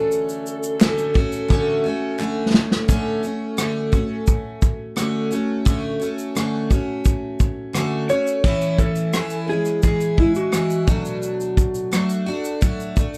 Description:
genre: acoustic pop.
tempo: 86 BPM.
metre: 4/4.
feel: straight.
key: unclear.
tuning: A4 = 443 Hz.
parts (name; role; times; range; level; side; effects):
electric slide guitar; melody; 0.0-2.2, 8.1-10.8 s; E4 to C#5; -26 LUFS; equal; none.
picked steel-string acoustic guitar; accompaniment; 0.0-13.2 s; A2 to F#4; -25 LUFS; equal; double-tracked.
natural country drum kit; drums; 0.1-13.2 s; crash cymbal, kick drum, rim click, shaker, snare drum; -21 LUFS; equal; none.
group handclap; percussion; 0.8-2.4 s; none; -35 LUFS; equal; none.
room: little or no reverb.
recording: none.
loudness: -21 LUFS.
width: mono.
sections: 0.0-2.9 A section; 2.9-8.4 B section; 8.4-13.2 C section.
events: drum fill 1.5-2.9.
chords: 0.0 Dmaj7; 8.4 Amaj7; 10.9 Bm7.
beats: | 0.11 0.80 1.50 2.19 | 2.88 3.58 4.27 4.97 | 5.66 6.36 7.05 7.75 | 8.45 9.14 9.84 10.53 | 11.23 11.92 12.62.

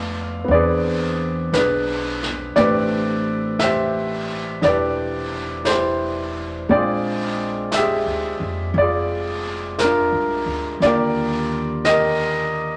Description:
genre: jazz ballad.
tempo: 58 BPM.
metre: 4/4.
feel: swing 68% on 8ths.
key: unclear.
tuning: A4 = 440 Hz.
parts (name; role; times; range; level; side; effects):
warm grand piano; accompaniment; 0.0-12.8 s; D3 to G5; -22 LUFS; equal; none.
upright bass; bass; 0.0-12.8 s; E1 to F2; -31 LUFS; equal; none.
vintage brush drum kit; drums; 0.5-12.8 s; brushed snare drum, hi-hat, snare drum; -32 LUFS; equal; none.
room: wet studio reverb, RT60 0.9 s.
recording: none.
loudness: -21 LUFS.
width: mono.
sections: 0.0-12.8 A section.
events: none.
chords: 0.5 E7b13; 2.5 Am11; 6.7 Bb13; 10.8 Ebmaj7.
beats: 0.48 1.52 | 2.55 3.58 4.61 5.64 | 6.67 7.71 8.74 9.78 | 10.81 11.84.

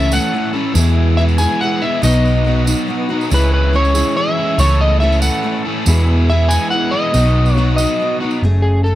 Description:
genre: folk rock and heartland rock.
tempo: 141 BPM.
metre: 3/4.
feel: straight.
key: E major.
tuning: A4 = 440 Hz.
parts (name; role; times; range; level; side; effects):
electric slide guitar; melody; 0.0-9.0 s; G#4 to G#5; -18 LUFS; equal; none.
picked steel-string acoustic guitar; accompaniment; 0.0-9.0 s; F#2 to A4; -22 LUFS; left 3 dB; none.
tonewheel organ; sustained chords; 0.0-8.4 s; B4 to E6; -31 LUFS; equal; chorus vibrato, slow rotary speaker.
crunchy overdriven guitar; riff; 0.0-8.4 s; E2 to F#4; -19 LUFS; right 1 dB; none.
hollow-body short-scale picked electric bass; bass; 0.0-9.0 s; F#1 to E2; -14 LUFS; equal; none.
tambourine; percussion; 0.0-8.4 s; none; -27 LUFS; right 6 dB; none.
room: small room ambience.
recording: dry, close 1970s-style studio recording.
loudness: -12 LUFS.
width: side -14 dB against mid.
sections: 0.0-8.4 A section.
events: none.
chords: 0.0 A/C#; 0.8 E; 2.0 B; 3.3 C#m; 4.6 A/C#; 5.9 E; 7.1 B; 8.4 F#madd9.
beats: 0.32 | 0.75 1.18 1.60 | 2.03 2.46 2.88 | 3.31 3.74 4.16 | 4.59 5.01 5.44 | 5.87 6.29 6.72 | 7.14 7.57 8.00 | 8.43 8.86.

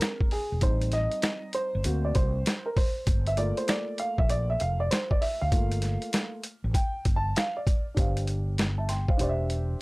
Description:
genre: hip hop, jazz-hop.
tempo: 98 BPM.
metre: 4/4.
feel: swing 64% on 16ths.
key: unclear.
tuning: A4 = 439 Hz.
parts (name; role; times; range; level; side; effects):
dark baby grand piano; accompaniment; 0.0-9.8 s; G3 to C6; -30 LUFS; right 1 dB; none.
boom bap sampler-style drum kit; drums; 0.0-9.7 s; hi-hat, kick drum, snare drum; -27 LUFS; equal; none.
fretless electric bass; bass; 0.5-9.7 s; E1 to D2; -28 LUFS; equal; none.
room: little or no reverb.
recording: dry, gritty hardware recording.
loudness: -25 LUFS.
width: side -24 dB against mid.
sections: 0.0-8.0 A section; 8.0-9.8 B section.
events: grand piano solo 0.0-8.0.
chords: 0.0 Eaug7; 0.6 Am7b5; 1.8 Daug7; 3.1 Gm9; 8.0 G5; 9.2 Dm11/E.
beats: 0.01 | 0.62 1.24 1.85 2.46 | 3.07 3.69 4.30 4.91 | 5.52 6.13 6.75 7.36 | 7.97 8.58 9.20 9.81.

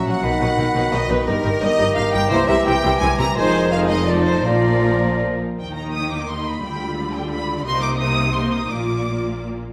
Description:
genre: classical.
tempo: 171 BPM.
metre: 3/4.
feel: rubato.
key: Eb major.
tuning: A4 = 440 Hz.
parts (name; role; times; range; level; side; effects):
bright clarinet; second line; 0.0-5.3 s; F4 to G4; -30 LUFS; equal; none.
warm oboe; second line; 0.0-5.4 s; Ab5 to C#6; -30 LUFS; equal; none.
warm symphonic violin section; second line; 0.0-9.6 s; Bb4 to Bb5; -28 LUFS; equal; none.
warm bassoon; accompaniment; 0.0-5.4 s; Eb3 to F#3; -26 LUFS; equal; none.
mellow French horn section; sustained chords; 0.0-5.4 s; F#3 to F4; -28 LUFS; equal; none.
warm symphonic violin section; melody; 0.1-9.4 s; Ab4 to Eb6; -31 LUFS; equal; none.
mellow hollow silver concert flute; second line; 0.1-5.2 s; Bb4 to Bb5; -28 LUFS; equal; none.
rich symphonic viola section; accompaniment; 0.1-9.6 s; F3 to F4; -29 LUFS; equal; none.
rich symphonic cello section; bass; 0.1-9.6 s; F2 to Eb3; -28 LUFS; equal; none.
rich symphonic double bass section; bass; 0.1-9.6 s; F1 to Eb2; -28 LUFS; equal; none.
room: wet recital hall reverb, RT60 1.3 s.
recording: none.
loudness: -20 LUFS.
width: mono.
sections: 0.0-5.6 A section; 5.6-9.7 B section.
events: none.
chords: 0.2 B; 1.3 Eb/G; 2.3 C7; 3.4 Fm7; 4.1 F7; 4.5 Bb; 5.6 Eb; 6.6 G7/D; 7.7 Cm7; 8.7 Bb.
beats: | 0.24 0.58 0.93 | 1.27 1.62 1.97 | 2.31 2.67 3.02 | 3.37 3.73 4.08 | 4.46 4.84 5.21 | 5.58 5.93 6.28 | 6.63 6.97 7.31 | 7.65 8.00 8.35 | 8.70 9.06 9.42.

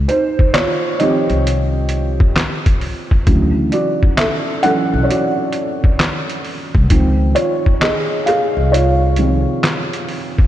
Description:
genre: lo-fi hip hop.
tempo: 66 BPM.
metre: 4/4.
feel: swing 66% on 16ths.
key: unclear.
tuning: A4 = 442 Hz.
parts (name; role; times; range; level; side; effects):
upright bass; bass; 0.0-9.4 s; B1 to D2; -16 LUFS; equal; none.
felt-muted upright piano; accompaniment; 0.1-10.5 s; B#2 to F#5; -17 LUFS; right 1 dB; low-pass filter.
trip hop sampler-style drum kit; drums; 0.1-10.5 s; handclaps, hi-hat, kick drum, snare drum; -16 LUFS; equal; none.
room: moderate lush hall reverb, RT60 3.2 s.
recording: dreamy mix soaked in reverb, cassette tape.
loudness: -13 LUFS.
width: side -12 dB against mid.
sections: 0.0-10.5 A section.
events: felt piano solo 0.0-10.5.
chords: 0.0 C#maj9; 3.3 Dmaj9; 6.9 C#maj9.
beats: 0.54 1.45 2.36 | 3.27 4.18 5.08 5.99 | 6.90 7.81 8.72 9.63.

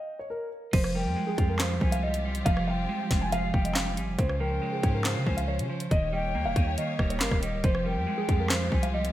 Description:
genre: hip hop, drill.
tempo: 139 BPM.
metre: 4/4.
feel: half-time.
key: F minor.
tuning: A4 = 440 Hz.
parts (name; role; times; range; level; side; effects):
dark concert grand piano; melody; 0.0-9.1 s; Ab4 to Ab5; -33 LUFS; equal; none.
clean electric guitar; accompaniment; 0.7-9.1 s; Db3 to F4; -32 LUFS; right 3 dB; spring reverb.
warm symphonic string section; sustained chords; 0.7-9.1 s; Db3 to Db5; -38 LUFS; left 2 dB; none.
hard-hitting 808-style bass; bass; 0.7-9.1 s; Db1 to Db3; -31 LUFS; equal; none.
drill drum kit; drums; 0.7-9.1 s; crash cymbal, handclaps, hi-hat, kick drum, rim click, snare drum; -27 LUFS; equal; gated reverb.
mellow concert flute; second line; 0.9-8.9 s; Eb5 to Ab5; -37 LUFS; left 4 dB; digital delay.
room: light reverb, studio reverb.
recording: bright 1980s-style digital production.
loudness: -25 LUFS.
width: side -13 dB against mid.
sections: 0.7-9.1 A section.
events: break 0.0-0.7.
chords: 0.0 N.C.; 0.7 Fmadd9; 4.2 Dbmaj7; 5.9 Eb7; 7.6 Fmadd9.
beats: 0.30 | 0.73 1.16 1.60 2.03 | 2.46 2.89 3.32 3.75 | 4.19 4.62 5.05 5.48 | 5.91 6.34 6.78 7.21 | 7.64 8.07 8.50 8.93.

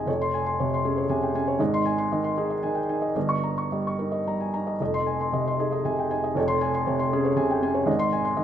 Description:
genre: neoclassical minimalist piano.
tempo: 107-120 BPM.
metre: 3/4.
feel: rubato.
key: unclear.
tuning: A4 = 439 Hz.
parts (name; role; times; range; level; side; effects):
felt-muted upright piano; solo; 0.0-8.4 s; F1 to Db6; -23 LUFS; equal; none.
room: moderate recital hall reverb, RT60 1.7 s.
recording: minimal, uncompressed stereo recording.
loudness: -23 LUFS.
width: side -10 dB against mid.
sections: 0.0-8.4 A section.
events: none.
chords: 0.1 Dbmaj7/F; 1.6 Ab; 3.2 Eb7/G; 4.8 Fm7; 6.4 Dbmaj7/F; 7.9 Ab.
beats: | 0.07 0.58 1.08 | 1.59 2.09 2.62 | 3.16 3.71 4.25 | 4.80 5.33 5.85 | 6.37 6.88 7.39 | 7.89 8.40.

